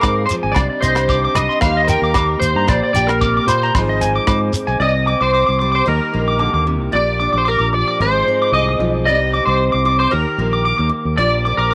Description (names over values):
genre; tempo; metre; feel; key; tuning
highlife guitar band; 113 BPM; 4/4; straight; C minor; A4 = 440 Hz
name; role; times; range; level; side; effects
clean electric guitar; melody; 0.0-11.7 s; Bb4 to F5; -21 LUFS; equal; ensemble chorus, cassette tape, tape echo
picked steel-string acoustic guitar; accompaniment; 0.0-11.7 s; Ab2 to Ab4; -25 LUFS; equal; cassette tape
electric guitar at the edge of break-up; arpeggios; 0.0-11.7 s; D5 to D6; -22 LUFS; equal; spring reverb, cassette tape, tape echo
fingered electric bass; bass; 0.0-11.7 s; Ab1 to Bb2; -22 LUFS; equal; none
tight funk drum kit; drums; 0.0-4.7 s; hi-hat, kick drum, rim click; -23 LUFS; equal; cassette tape
agogo bells; percussion; 0.0-4.4 s; none; -29 LUFS; equal; none
shekere; percussion; 0.0-4.7 s; none; -28 LUFS; equal; none
room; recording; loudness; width
light reverb; home recording on cassette; -16 LUFS; mono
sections
0.0-4.8 A section; 4.8-11.7 B section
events
none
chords
0.0 Fm/Ab; 0.6 Cmadd9; 1.6 Eb; 2.7 Bb6; 3.7 Fm7/Ab; 4.8 Csus2; 5.9 Eb; 6.9 Bb6; 8.0 Fm7/Ab; 9.1 Cmadd9; 10.1 Eb; 11.2 Bb6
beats
0.03 | 0.56 1.09 1.62 2.16 | 2.69 3.22 3.75 4.28 | 4.81 5.34 5.87 6.40 | 6.93 7.46 8.00 8.53 | 9.06 9.59 10.12 10.65 | 11.18 11.72